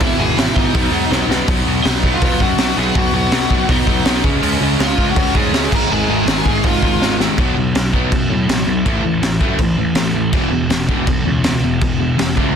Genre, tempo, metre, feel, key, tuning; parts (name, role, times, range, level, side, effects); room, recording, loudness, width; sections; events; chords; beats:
punk rock; 163 BPM; 4/4; straight; B lydian; A4 = 445 Hz
lead guitar through a small cranked amp; melody; 0.0-7.2 s; D#4 to A#5; -21 LUFS; left 2 dB; overdrive, ping-pong delay
biting overdriven guitar; riff; 0.0-1.5, 4.4-7.4 s; E2 to C#4; -24 LUFS; right 2 dB
crunchy overdriven guitar; riff; 0.0-12.5 s; E2 to C#4; -21 LUFS; left 14 dB
distorted electric guitar; riff; 0.0-12.5 s; E2 to C#4; -21 LUFS; right 16 dB; distortion
fuzz picked electric bass; bass; 0.0-12.5 s; E1 to A2; -21 LUFS; equal; overdrive
raw garage drum kit; drums; 0.0-12.5 s; crash cymbal, hi-hat, kick drum, snare drum; -18 LUFS; equal
little or no reverb; dense, heavily limited modern master; -13 LUFS; side -7 dB against mid
0.0-1.5 A section; 1.5-7.4 B section; 7.4-12.6 C section
drum fill 1.1-1.5, 7.0-7.4
0.0 E/G#; 0.7 B; 4.2 C#; 5.7 G#5; 7.4 B5; 8.9 A5; 10.3 E5
| 0.01 0.38 0.75 1.11 | 1.48 1.85 2.22 2.59 | 2.96 3.33 3.69 4.06 | 4.43 4.80 5.17 5.54 | 5.91 6.27 6.64 7.01 | 7.38 7.75 8.12 8.49 | 8.86 9.23 9.60 9.97 | 10.34 10.71 11.07 11.44 | 11.81 12.18